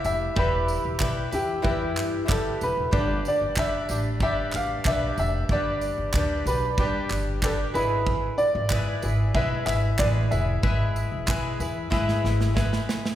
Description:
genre	acoustic pop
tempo	94 BPM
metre	4/4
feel	straight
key	unclear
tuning	A4 = 440 Hz
part	warm upright piano	melody	0.0-12.5 s	G4 to F5	-28 LUFS	equal	none
part	fingerpicked twelve-string acoustic guitar	accompaniment	0.0-13.2 s	E3 to B4	-29 LUFS	left 1 dB	none
part	upright bass	bass	0.0-12.8 s	E1 to G#2	-27 LUFS	equal	none
part	modern studio drum kit	drums	0.0-13.2 s	handclaps, kick drum, snare drum, tambourine	-29 LUFS	right 1 dB	none
room	moderate concert hall reverb, RT60 2.1 s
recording	recorded in a church or concert hall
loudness	-22 LUFS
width	side -12 dB against mid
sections	0.0-13.2 A section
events	drum fill 11.9-13.2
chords	0.0 Em; 2.9 G; 7.7 E

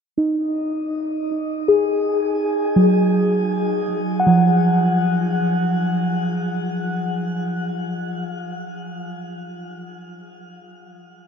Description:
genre	ambient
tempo	free time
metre	none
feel	none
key	unclear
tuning	A4 = 439 Hz
part	muted felt-like synth keys	solo	0.2-10.8 s	F3 to Gb5	-18 LUFS	equal	chorus, diffuse ambient delay
room	wet shimmer reverb, RT60 7.8 s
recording	none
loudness	-18 LUFS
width	side -7 dB against mid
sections	0.0-11.3 A section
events	none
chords	0.0 Gbsus2

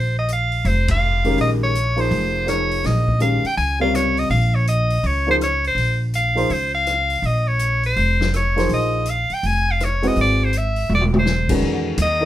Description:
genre	modal jazz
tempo	164 BPM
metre	4/4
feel	swing 64% on 8ths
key	Bb dorian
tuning	A4 = 440 Hz
part	bright soprano saxophone	melody	0.0-12.3 s	C5 to Ab5	-20 LUFS	equal	none
part	upright bass	bass	0.0-12.3 s	E1 to E2	-20 LUFS	equal	none
part	vintage drum kit	drums	0.3-12.1 s	crash cymbal, hi-hat, kick drum, ride cymbal, rim click, snare drum, toms	-27 LUFS	left 1 dB	none
part	warm upright piano	accompaniment	1.2-12.3 s	C3 to Db5	-22 LUFS	left 1 dB	none
room	light reverb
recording	band playing live in one room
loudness	-17 LUFS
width	side -13 dB against mid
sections	0.0-11.6 A section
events	band accent 0.8; drum fill 10.9-11.2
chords	0.0 Bbm9; 10.2 Ab7alt; 11.6 C#m9

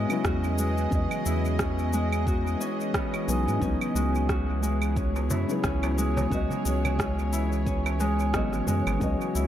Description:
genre	organic downtempo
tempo	89 BPM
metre	4/4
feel	swing 57% on 16ths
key	C# minor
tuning	A4 = 440 Hz
part	felt-muted upright piano	accompaniment	0.0-9.5 s	C#3 to D#5	-32 LUFS	left 2 dB	sidechain pumping, dub echo
part	bowed-like drone	sustained chords	0.0-9.5 s	E3 to D#5	-34 LUFS	right 3 dB	built-in reverb, sidechain pumping
part	Celtic harp	arpeggios	0.0-9.5 s	G#3 to G#4	-30 LUFS	left 2 dB	analog delay
part	round analog bass	bass	0.0-9.5 s	G#1 to G#2	-28 LUFS	equal	tube saturation
part	electronic claves, cabasa and rim click	drums	0.1-9.5 s	none	-34 LUFS	right 1 dB	dub echo
part	electronic kick drum	drums	0.2-9.2 s	none	-31 LUFS	equal	none
part	darbuka	percussion	3.6-9.2 s	none	-38 LUFS	right 2 dB	none
room	light reverb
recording	echo-heavy mix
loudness	-24 LUFS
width	side -11 dB against mid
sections	0.0-9.5 A section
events	none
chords	0.0 Emaj7; 3.6 C#m7

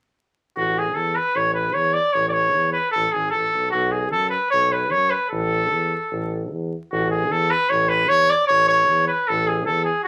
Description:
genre	balkan folk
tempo	151 BPM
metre	2/4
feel	swing 54% on 16ths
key	A major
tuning	A4 = 441 Hz
part	clear trumpet	melody	0.6-10.1 s	F#4 to D5	-21 LUFS	equal	none
part	warm tuba	bass	0.6-9.9 s	G#1 to F#2	-29 LUFS	equal	none
room	wet small room ambience, RT60 0.5 s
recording	vinyl crackle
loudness	-20 LUFS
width	mono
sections	0.6-6.9 A section; 6.9-10.1 A section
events	none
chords	0.6 A; 3.7 B5; 5.3 A5

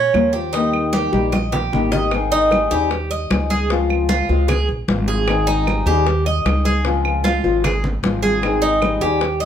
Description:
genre	latin, Cuban son and guajira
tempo	152 BPM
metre	4/4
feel	straight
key	Ab major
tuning	A4 = 440 Hz
part	Cuban tres	arpeggios	0.0-9.5 s	Db4 to Eb5	-20 LUFS	right 3 dB	none
part	upright bass	bass	0.0-9.5 s	Ab1 to Eb2	-22 LUFS	equal	none
part	nylon-string guitar	accompaniment	0.1-9.3 s	Db3 to C5	-21 LUFS	left 5 dB	none
part	bongos	percussion	0.1-9.4 s	none	-28 LUFS	left 6 dB	none
part	claves	percussion	0.1-9.0 s	none	-29 LUFS	right 6 dB	none
part	congas	percussion	0.1-9.5 s	none	-24 LUFS	equal	none
room	moderate large studio reverb, RT60 0.9 s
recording	none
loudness	-16 LUFS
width	side -9 dB against mid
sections	0.0-2.1 A section; 2.1-9.5 B section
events	drum fill 0.9-2.1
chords	0.0 Bbmadd9; 0.5 Eb; 2.1 Abmaj7; 3.7 Dbmaj7; 5.3 Abmaj7; 6.9 Dbmaj7; 8.4 Abmaj7

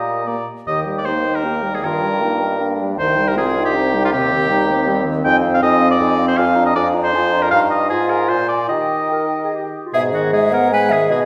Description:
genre	quick classical-period movement for wind quintet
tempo	144-162 BPM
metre	3/4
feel	rubato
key	Eb major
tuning	A4 = 439 Hz
part	mellow hollow concert flute	melody	0.0-11.3 s	D#5 to Bb5	-26 LUFS	equal	none
part	clear oboe	second line	0.0-11.2 s	F4 to G5	-22 LUFS	equal	none
part	clear French horn	accompaniment	0.0-11.3 s	B2 to F4	-26 LUFS	equal	none
part	warm clarinet	accompaniment	0.0-11.3 s	C4 to Bb4	-26 LUFS	equal	none
part	clear bassoon	bass	0.0-11.3 s	C2 to Eb3	-23 LUFS	equal	none
room	wet recital hall reverb, RT60 1.5 s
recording	recorded in a church or concert hall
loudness	-17 LUFS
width	mono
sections	0.7-9.9 A section; 9.9-11.3 B section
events	none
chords	0.3 Bb; 0.7 Eb; 1.9 Eb/G; 3.0 Cm; 4.1 Cm/Eb; 5.3 Fm7; 6.4 Bb7/F; 7.5 Eb/G; 7.9 Fm/Ab; 8.3 Bb7; 8.7 Eb; 9.9 G#m

